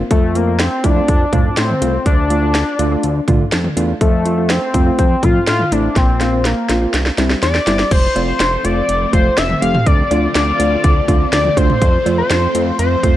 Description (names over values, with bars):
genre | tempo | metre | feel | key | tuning
synth-pop | 123 BPM | 4/4 | straight | F major | A4 = 438 Hz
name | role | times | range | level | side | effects
fat analog bass | bass | 0.0-13.2 s | F1 to A2 | -18 LUFS | equal | none
octave-doubled lead | melody | 0.1-13.2 s | A3 to F5 | -18 LUFS | left 2 dB | chorus, slapback echo
house drum kit | drums | 0.1-13.1 s | cowbell, crash cymbal, hi-hat, kick drum, snare drum, toms | -16 LUFS | equal | none
soft electric-piano-like synth keys | accompaniment | 0.4-13.2 s | G3 to G4 | -21 LUFS | right 2 dB | chorus
string machine, full ensemble | sustained chords | 7.9-13.2 s | D3 to F4 | -23 LUFS | right 2 dB | phaser, ensemble chorus
room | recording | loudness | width
light reverb, digital ambience | none | -12 LUFS | side -13 dB against mid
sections
0.0-7.9 A section; 7.9-13.2 B section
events
drum fill 6.0-7.9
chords
0.1 F; 2.1 Dm; 4.0 F; 6.0 Bbsus2; 6.9 Cadd9; 7.9 F; 9.9 Dm7; 11.8 F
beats
| 0.11 0.60 1.08 1.57 | 2.06 2.55 3.04 3.52 | 4.01 4.50 4.99 5.47 | 5.96 6.45 6.94 7.42 | 7.91 8.40 8.89 9.38 | 9.86 10.35 10.84 11.33 | 11.82 12.30 12.79